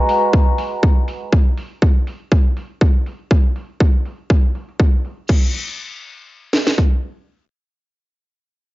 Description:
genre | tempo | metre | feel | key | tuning
filtered disco house | 121 BPM | 4/4 | swing 55% on 16ths | unclear | A4 = 440 Hz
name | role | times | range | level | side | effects
warm chamber violin section | sustained chords | 0.0-1.3 s | Ab3 to Bb5 | -18 LUFS | equal | sidechain pumping, low-pass filter
house drum kit | drums | 0.1-5.4 s | crash cymbal, hi-hat | -31 LUFS | left 4 dB | overdrive, sidechain pumping on hats, low-pass filter on hats, low-pass filter on snare, sidechain pumping on cymbals, low-pass filter on cymbals, low-pass filter on room
house drum kit | drums | 0.3-6.9 s | kick drum, snare drum | -14 LUFS | equal | overdrive
room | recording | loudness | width
little or no reverb | nothing above 7.5 kHz | -15 LUFS | side -18 dB against mid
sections
0.0-5.3 A section; 5.3-8.7 B section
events
none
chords
0.0 Abm9; 1.3 N.C.

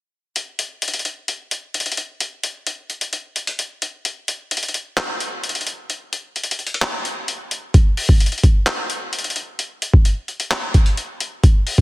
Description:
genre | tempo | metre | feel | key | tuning
hip hop | 130 BPM | 4/4 | half-time | none | none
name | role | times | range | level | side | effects
boom bap sampler-style drum kit | drums | 0.4-11.8 s | handclaps, hi-hat, kick drum | -17 LUFS | equal | none
room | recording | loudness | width
little or no reverb | dense, heavily limited modern master | -18 LUFS | side -19 dB against mid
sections
0.4-7.7 A section; 7.7-11.8 B section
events
kick muted 5.9-7.7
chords
none

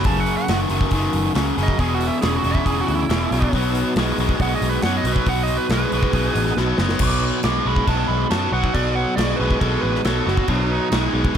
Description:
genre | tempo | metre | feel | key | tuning
blues rock power trio and southern rock | 138 BPM | 4/4 | straight | B mixolydian | A4 = 443 Hz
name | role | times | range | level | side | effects
biting lead guitar | second line | 0.0-11.4 s | D4 to D6 | -26 LUFS | right 6 dB | overdrive
overdriven tonewheel organ | sustained chords | 0.0-11.4 s | A#3 to A5 | -31 LUFS | right 3 dB | slow rotary speaker, chorus vibrato
biting overdriven guitar | riff | 0.0-11.4 s | E2 to G#3 | -21 LUFS | left 1 dB | none
vintage muted picked electric bass | bass | 0.0-11.4 s | E1 to F#2 | -23 LUFS | equal | none
big rock drum kit | drums | 0.0-11.4 s | crash cymbal, hi-hat, kick drum, snare drum | -24 LUFS | equal | none
room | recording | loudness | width
little or no reverb | none | -17 LUFS | side -8 dB against mid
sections
0.0-7.0 A section; 7.0-11.4 A section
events
lead electric guitar solo 0.0-11.4; drum fill 6.6-7.0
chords
0.1 F#7; 1.8 E7; 3.5 B7

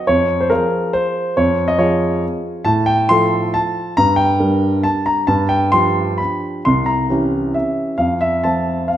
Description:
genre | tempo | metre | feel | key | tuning
classical, piano waltz | 126-147 BPM | 3/4 | rubato | F major | A4 = 440 Hz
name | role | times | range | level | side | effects
warm grand piano | solo | 0.0-9.0 s | C2 to C6 | -14 LUFS | equal | none
room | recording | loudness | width
moderate recital hall reverb, RT60 1.4 s | none | -14 LUFS | side -11 dB against mid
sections
0.0-9.0 A section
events
none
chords
0.1 Db/F; 2.7 F/A; 4.0 Gm; 5.3 G7; 6.7 C7b9; 8.0 F

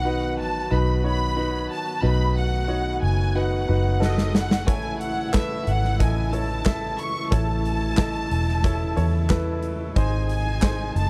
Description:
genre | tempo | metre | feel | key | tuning
piano-driven pop | 91 BPM | 4/4 | straight | unclear | A4 = 441 Hz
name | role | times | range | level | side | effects
clear studio violin section | melody | 0.0-11.1 s | D#5 to C#6 | -32 LUFS | equal | none
bright upright piano | accompaniment | 0.0-11.1 s | G#2 to E5 | -31 LUFS | equal | none
tonewheel organ | sustained chords | 0.0-11.1 s | B#2 to F#4 | -37 LUFS | equal | overdrive, fast rotary speaker
vintage muted fingered electric bass | bass | 0.0-11.1 s | E1 to E2 | -26 LUFS | equal | none
huge arena drum kit | drums | 4.0-11.1 s | handclaps, hi-hat, kick drum, snare drum | -28 LUFS | equal | none
room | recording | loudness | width
little or no reverb | none | -23 LUFS | mono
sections
0.0-11.1 A section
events
drum fill 4.0-4.7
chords
0.0 B; 4.7 A; 10.0 G#

